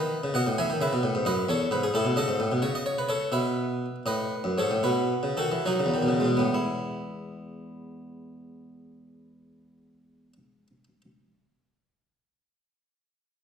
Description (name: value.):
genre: classical, baroque-style suite movement for harpsichord.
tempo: 64-90 BPM (dotted quarters).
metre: 12/8.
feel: rubato.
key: E major.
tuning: A4 = 441 Hz.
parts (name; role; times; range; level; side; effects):
harpsichord; solo; 0.0-11.0 s; E2 to G#5; -25 LUFS; equal; none.
room: wet recital hall reverb, RT60 1.4 s.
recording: heard from further back in the room.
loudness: -24 LUFS.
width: side -7 dB against mid.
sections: 0.0-6.5 A section; 6.5-10.1 B section.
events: slowing down 1.5-6.5.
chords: 0.0 B; 0.6 E; 1.9 A; 3.3 B7sus4; 4.8 B7; 6.5 E.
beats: | 0.58 1.26 1.94 2.62 | 3.32 4.06 4.82 5.64 | 6.54 7.45 8.34 9.24.